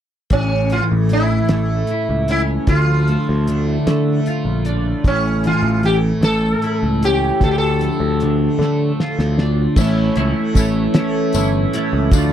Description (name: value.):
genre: psychedelic rock.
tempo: 51 BPM (dotted quarters).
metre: 6/8.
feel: straight.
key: unclear.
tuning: A4 = 438 Hz.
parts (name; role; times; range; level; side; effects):
sitar; melody; 0.3-9.4 s; C#4 to A4; -21 LUFS; equal; slapback echo.
twelve-string electric guitar; riff; 0.3-12.3 s; A2 to F4; -19 LUFS; equal; rotary speaker, double-tracked left and right.
picked electric bass; bass; 0.3-12.3 s; G1 to D3; -20 LUFS; equal; none.
tanpura; drone; 0.3-12.3 s; A2 to A3; -29 LUFS; right 1 dB; none.
cloth-damped thuddy drum kit; drums; 0.3-12.3 s; crash cymbal, hi-hat, kick drum, snare drum; -17 LUFS; equal; none.
tonewheel organ; sustained chords; 9.8-12.3 s; A4 to F5; -27 LUFS; right 3 dB; slow rotary speaker.
tambourine; percussion; 9.8-12.3 s; none; -31 LUFS; left 15 dB; none.
room: little or no reverb.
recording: dry, close 1970s-style studio recording.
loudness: -15 LUFS.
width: side -10 dB against mid.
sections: 0.3-9.8 A section; 9.8-12.3 B section.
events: drum fill 8.6-9.8.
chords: 0.3 A; 2.7 Dm; 5.1 A; 7.4 Dm; 9.8 A.